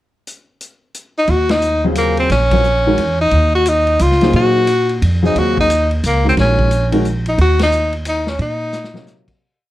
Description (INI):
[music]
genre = modal jazz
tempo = 177 BPM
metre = 3/4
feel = swing 63% on 8ths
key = Eb dorian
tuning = A4 = 440 Hz
[part]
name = vintage drum kit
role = drums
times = 0.3-9.3 s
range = crash cymbal, hi-hat, kick drum, ride cymbal, snare drum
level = -26 LUFS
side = left 2 dB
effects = none
[part]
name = clear tenor saxophone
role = melody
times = 1.2-9.3 s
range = Bb3 to Gb4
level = -15 LUFS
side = left 1 dB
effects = none
[part]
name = upright bass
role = bass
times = 1.3-9.4 s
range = Bb1 to Bb2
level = -16 LUFS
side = right 1 dB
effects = none
[part]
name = warm concert grand piano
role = accompaniment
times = 1.8-9.4 s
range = C3 to Db5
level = -18 LUFS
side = left 1 dB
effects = none
[sound]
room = moderate small room reverb, RT60 0.5 s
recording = dark, warm production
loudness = -12 LUFS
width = side -15 dB against mid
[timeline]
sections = 0.3-1.3 pickup bar; 1.3-9.4 A section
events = band accent 1.4, 7.6; fade-out 7.8-9.4; drum fill 8.7-9.1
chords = 0.3 N.C.; 1.3 Ebm9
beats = | 0.26 0.60 0.94 | 1.28 1.62 1.96 | 2.30 2.64 2.98 | 3.32 3.66 4.00 | 4.34 4.68 5.01 | 5.35 5.69 6.03 | 6.37 6.71 7.04 | 7.38 7.72 8.06 | 8.39 8.73 9.07